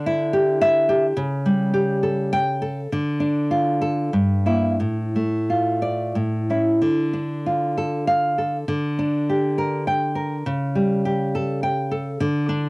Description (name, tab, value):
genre	romantic piece for solo classical guitar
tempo	85-109 BPM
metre	3/4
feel	rubato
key	D minor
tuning	A4 = 441 Hz
part	nylon-string guitar	solo	0.0-12.7 s	G2 to G5	-19 LUFS	equal	none
room	moderate booth ambience, RT60 0.2 s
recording	home recording on cassette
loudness	-19 LUFS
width	side -27 dB against mid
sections	0.0-6.8 A section; 6.8-12.7 A section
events	none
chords	0.0 Dsus24; 1.2 A7/C#; 2.9 Dm; 4.1 Edim/G; 4.8 Dm/A; 6.2 A; 6.8 Dm; 8.7 Gm/D; 10.5 A7/C#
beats	0.05 0.60 | 1.16 1.73 2.31 | 2.90 3.49 4.12 | 4.80 5.49 6.16 | 6.83 7.46 8.07 | 8.68 9.28 9.88 | 10.47 11.05 11.63 | 12.21